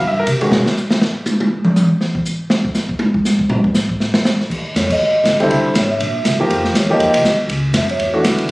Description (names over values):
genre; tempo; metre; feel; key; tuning
jazz, small-group swing and bop; 241 BPM; 4/4; swing 57% on 8ths; unclear; A4 = 440 Hz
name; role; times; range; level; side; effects
warm grand piano; accompaniment; 0.0-0.7, 5.4-8.5 s; D3 to Fb5; -16 LUFS; equal; none
upright bass; bass; 0.0-0.6, 4.5-8.5 s; Ab1 to C3; -22 LUFS; equal; none
open jazz drum kit; drums; 0.3-8.5 s; crash cymbal, hi-hat, kick drum, ride cymbal, snare drum, toms; -16 LUFS; equal; none
vibraphone with soft mallets; melody; 4.8-8.0 s; Db5 to E5; -17 LUFS; equal; none
room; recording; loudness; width
wet club reverb, RT60 0.5 s; recorded on a phone in the room, studio reverb; -13 LUFS; side -22 dB against mid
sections
0.0-4.5 A section; 4.5-8.5 B section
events
drum solo 0.5-4.5; band accent 4.9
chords
0.0 C5; 0.5 B; 1.5 N.C.; 4.5 Ebmaj7(no3); 5.5 C7; 6.5 F9sus4; 7.5 Dbmadd11; 8.0 Dadd9